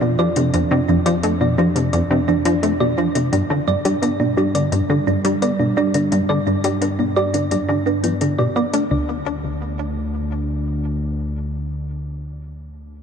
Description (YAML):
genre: ambient, sequencer-driven space music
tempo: 86 BPM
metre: 4/4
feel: straight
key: unclear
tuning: A4 = 440 Hz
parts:
  - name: thumb-piano-like synth pluck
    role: arpeggios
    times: 0.0-9.2 s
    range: A3 to D5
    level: -21 LUFS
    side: right 1 dB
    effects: chorus, auto-pan, ping-pong delay
  - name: plucky analog bass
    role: riff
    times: 0.0-9.2 s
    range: D2 to D4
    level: -20 LUFS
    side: equal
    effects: wide subtle chorus, ping-pong delay
  - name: analog drone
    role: bass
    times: 0.0-11.0 s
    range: D2 to G2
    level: -25 LUFS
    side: equal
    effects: chorus
  - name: electronic bongos and hi-hat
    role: percussion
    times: 0.2-8.9 s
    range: none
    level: -30 LUFS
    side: left 4 dB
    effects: ping-pong delay
room: moderate huge ambient reverb, RT60 8.2 s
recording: none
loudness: -17 LUFS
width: side -7 dB against mid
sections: 0.0-8.9 A section; 8.9-11.7 B section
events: none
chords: 0.0 F5; 3.3 G; 8.9 N.C.